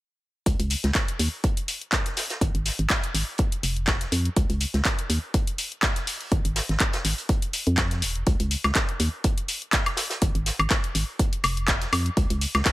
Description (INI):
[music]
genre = piano house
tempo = 123 BPM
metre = 4/4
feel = swing 55% on 16ths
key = unclear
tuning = A4 = 440 Hz
[part]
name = organ-like FM bass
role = bass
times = 0.5-12.6 s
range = Eb1 to F2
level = -25 LUFS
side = equal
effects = sidechain pumping
[part]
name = electronic kick drum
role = drums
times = 0.5-12.7 s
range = none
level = -24 LUFS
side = equal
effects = none
[part]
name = house drum kit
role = drums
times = 0.5-12.7 s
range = handclaps, hi-hat, woodblock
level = -26 LUFS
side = left 1 dB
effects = none
[part]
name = vintage drum kit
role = drums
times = 0.5-12.7 s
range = hi-hat, snare drum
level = -35 LUFS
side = right 2 dB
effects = sidechain pumping on hats, high-pass filter on hats, high-pass filter on snare, high-pass filter on room
[sound]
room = little or no reverb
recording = none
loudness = -22 LUFS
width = side -17 dB against mid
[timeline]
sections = 0.5-12.7 A section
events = none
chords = none